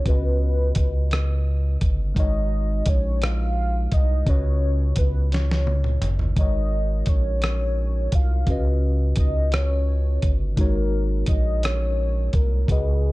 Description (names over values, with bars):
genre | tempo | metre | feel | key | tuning
slow six-eight R&B | 57 BPM (dotted quarters) | 6/8 | straight | G# dorian | A4 = 439 Hz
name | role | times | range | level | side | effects
warm velvety synth lead | melody | 0.0-13.1 s | G#4 to E#5 | -30 LUFS | left 1 dB | chorus
tine electric piano | accompaniment | 0.0-13.1 s | C#3 to D#5 | -30 LUFS | left 2 dB | phaser
round analog bass | bass | 0.0-13.1 s | G1 to C#2 | -22 LUFS | equal | none
dusty soul sampler-style drum kit | drums | 0.1-12.9 s | hi-hat, kick drum, rim click, snare drum, toms | -22 LUFS | equal | none
room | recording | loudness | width
little or no reverb | dark, warm production | -19 LUFS | side -20 dB against mid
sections
0.0-13.1 A section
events
drum fill 5.3-6.4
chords
0.1 C#9sus4; 2.2 G#9sus4; 4.3 C#9sus4; 6.4 G#9sus4; 8.5 C#9sus4; 10.6 G#9sus4